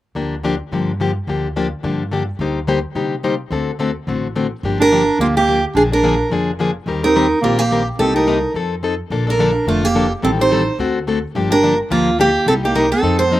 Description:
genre	acoustic string swing (jazz manouche)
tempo	214 BPM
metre	4/4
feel	swing 58% on 8ths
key	G minor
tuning	A4 = 440 Hz
part	picked plugged-in steel-string acoustic guitar	accompaniment	0.1-13.4 s	C3 to C5	-19 LUFS	left 3 dB	none
part	upright bass	bass	0.2-13.4 s	F1 to C3	-24 LUFS	equal	none
part	picked steel-string acoustic guitar	melody	4.8-13.4 s	F4 to C5	-17 LUFS	right 1 dB	none
part	warm clarinet	second line	4.8-13.4 s	A3 to Eb4	-19 LUFS	right 3 dB	none
room	light reverb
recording	recorded outdoors, with no room sound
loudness	-15 LUFS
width	side -14 dB against mid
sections	0.2-4.6 A section; 4.6-13.4 B section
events	none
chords	0.2 Gm7/D; 2.4 Cm9/D; 3.5 D7; 4.6 Gm7; 5.8 Bb7; 6.9 Eb6; 8.0 Cm7; 8.6 F7; 9.1 Bbmaj7; 10.2 Am7b5; 10.8 D7; 11.3 Gm7; 12.5 Cm7

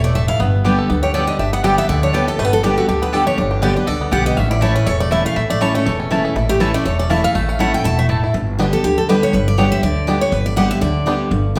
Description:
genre	bluegrass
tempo	242 BPM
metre	4/4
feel	swing 55% on 8ths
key	unclear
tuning	A4 = 441 Hz
part	picked steel-string acoustic guitar	melody	0.0-11.5 s	F#4 to A5	-22 LUFS	equal	none
part	picked steel-string acoustic guitar	accompaniment	0.0-11.6 s	E2 to G4	-21 LUFS	equal	none
part	bluegrass banjo	arpeggios	0.0-11.6 s	A3 to A4	-26 LUFS	equal	none
part	upright bass	bass	0.0-11.6 s	E1 to D2	-24 LUFS	equal	none
part	mandolin	stabs	0.6-8.2 s	A3 to A5	-26 LUFS	equal	none
room	wet large studio reverb, RT60 1.1 s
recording	heard from further back in the room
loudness	-17 LUFS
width	mono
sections	0.0-8.3 A section; 8.3-11.6 B section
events	steel-string acoustic guitar solo 8.3-11.6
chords	0.4 G; 4.4 A; 8.3 G

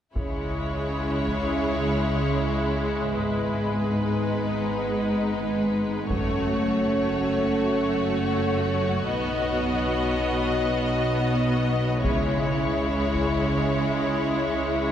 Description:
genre	cinematic, epic orchestral film score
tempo	81 BPM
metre	4/4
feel	straight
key	C# minor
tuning	A4 = 442 Hz
part	rich studio violin section	melody	0.2-14.9 s	B4 to D#5	-31 LUFS	left 3 dB	none
part	rich studio violin section	second line	0.2-14.9 s	D#4 to F#4	-32 LUFS	left 2 dB	none
part	clear symphonic viola section	accompaniment	0.2-14.9 s	G#3 to B3	-29 LUFS	equal	none
part	dark French horn section	sustained chords	0.2-14.9 s	F#3 to E4	-29 LUFS	equal	none
part	clear studio cello section	bass	0.2-14.9 s	F#2 to C#3	-29 LUFS	right 1 dB	none
part	rich studio double bass section	bass	0.2-14.9 s	F#1 to C#2	-31 LUFS	right 1 dB	none
part	taiko ensemble	drums	0.2-1.6, 6.1-7.5, 12.0-13.5 s	none	-34 LUFS	equal	none
room	wet church reverb, RT60 3.6 s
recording	recorded in a church or concert hall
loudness	-22 LUFS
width	side -10 dB against mid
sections	0.2-14.9 A section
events	build-up 0.2-14.9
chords	0.2 C#m; 3.1 G#m; 6.1 F#m; 9.1 B; 12.0 C#m

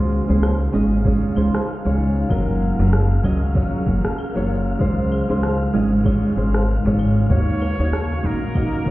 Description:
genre	sunset chillout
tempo	96 BPM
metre	4/4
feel	swing 57% on 16ths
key	Db major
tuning	A4 = 440 Hz
part	nylon-string guitar	accompaniment	0.0-8.9 s	Gb3 to F5	-21 LUFS	right 1 dB	auto-pan, tape echo
part	ethereal airy pad	sustained chords	0.0-8.9 s	Db3 to F5	-28 LUFS	equal	ensemble chorus, built-in reverb
part	upright bass	bass	0.0-8.9 s	Gb1 to Eb2	-20 LUFS	equal	none
part	wind-like tuned noise texture	texture	0.0-8.9 s	F5 to F6	-34 LUFS	left 2 dB	built-in reverb
part	electronic shaker, rim click and claves	drums	0.1-8.9 s	none	-28 LUFS	equal	none
part	electronic kick drum	drums	1.1-8.9 s	none	-21 LUFS	equal	none
part	trumpet with straight mute	melody	7.3-8.9 s	Bb4 to Db5	-31 LUFS	equal	digital delay
part	bongos	percussion	7.6-7.8 s	none	-35 LUFS	left 2 dB	none
room	moderate lush hall reverb, RT60 1.8 s, small room ambience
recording	heard muffled through a wall, stone room reverb, EQ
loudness	-17 LUFS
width	side -17 dB against mid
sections	0.0-8.9 A section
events	none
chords	0.0 Dbmaj7; 2.3 Gbmaj7; 4.8 Dbmaj7; 7.3 Ebm7

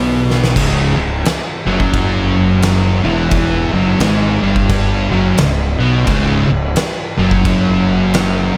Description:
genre	stoner and doom metal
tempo	87 BPM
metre	4/4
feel	swing 60% on 8ths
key	unclear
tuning	A4 = 440 Hz
part	thick fuzz guitar	riff	0.0-8.6 s	C#2 to B3	-20 LUFS	equal	distortion
part	thick fuzz guitar	riff	0.0-8.5 s	C#2 to B3	-21 LUFS	equal	distortion
part	fuzz fingered electric bass	bass	0.0-8.5 s	C#1 to B1	-20 LUFS	equal	overdrive, tube saturation
part	oversized low-tuned drum kit	drums	0.3-8.3 s	crash cymbal, kick drum, snare drum	-21 LUFS	equal	none
part	distorted electric guitar	riff	0.6-8.6 s	C#2 to B3	-24 LUFS	equal	overdrive
room	little or no reverb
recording	none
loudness	-14 LUFS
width	mono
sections	0.6-8.6 A section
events	drum fill 0.2-0.6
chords	0.0 N.C.; 0.6 C#m

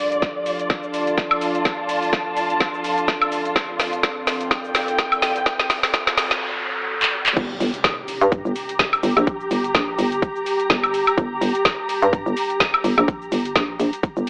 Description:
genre	bass house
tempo	126 BPM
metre	4/4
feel	swing 56% on 16ths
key	G minor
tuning	A4 = 441 Hz
part	dark analog pad	sustained chords	0.0-14.3 s	F3 to Bb4	-32 LUFS	equal	chorus, vintage 12-bit sampler grit, sidechain pumping
part	riser, noise sweep and impact	sound effects	1.5-9.3 s	none	-31 LUFS	equal	none
part	muted studio string section	texture	0.0-14.3 s	F4 to Bb5	-24 LUFS	equal	sidechain pumping
part	garage drum kit	drums	0.1-14.3 s	crash cymbal, handclaps, hi-hat, shaker, snare drum, woodblock	-20 LUFS	equal	overdrive, high-pass filter on hats, high-pass filter on perc, high-pass filter on snare, high-pass filter on cymbals
part	electronic kick drum	drums	0.2-14.1 s	none	-22 LUFS	equal	none
part	hollow knocking FM bass	bass	7.4-14.3 s	G1 to G2	-20 LUFS	equal	tube saturation, sidechain pumping
room	moderate digital room reverb, RT60 1.1 s, digital ambience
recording	high-pass filter, AM radio sound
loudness	-18 LUFS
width	side -37 dB against mid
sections	0.0-7.4 A section; 7.4-14.3 B section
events	build-up 0.0-7.4; drum fill 0.0-6.4, 7.0-7.4; filter sweep 0.0-7.4; riser 1.5-7.4; noise sweep 5.5-7.4; drop 7.4-14.3; impact 7.4-9.3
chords	0.0 F6; 7.4 Gm

